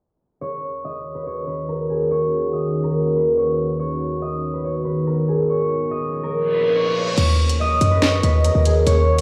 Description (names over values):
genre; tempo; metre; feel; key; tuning
hip hop, drill; 142 BPM; 4/4; half-time; Eb minor; A4 = 440 Hz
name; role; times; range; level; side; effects
concert harp; melody; 0.4-9.2 s; Ab4 to Eb5; -23 LUFS; equal; none
deep dark ambient pad; sustained chords; 1.2-9.2 s; Eb2 to Ab4; -28 LUFS; equal; chorus, built-in reverb
reverse cymbal; sound effects; 6.5-7.2 s; none; -31 LUFS; equal; none
short 808-style bass; bass; 7.2-9.2 s; Eb2 to Gb2; -19 LUFS; equal; none
drill drum kit; drums; 7.2-9.2 s; crash cymbal, finger snaps, hi-hat, snare drum; -26 LUFS; equal; none
warm velvety synth lead; second line; 7.6-9.2 s; Db5 to Eb5; -25 LUFS; equal; chorus, tape echo
room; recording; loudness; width
digital ambience; played on a big sound system in a bare room, large studio reverb, vinyl crackle, low-pass filter; -20 LUFS; mono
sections
0.4-7.2 A section; 7.2-9.2 B section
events
filter sweep 0.4-7.2; reverse cymbal 6.5-7.2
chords
0.4 Ebm7; 3.8 Abm7; 5.5 Bbm7; 7.2 Ebm7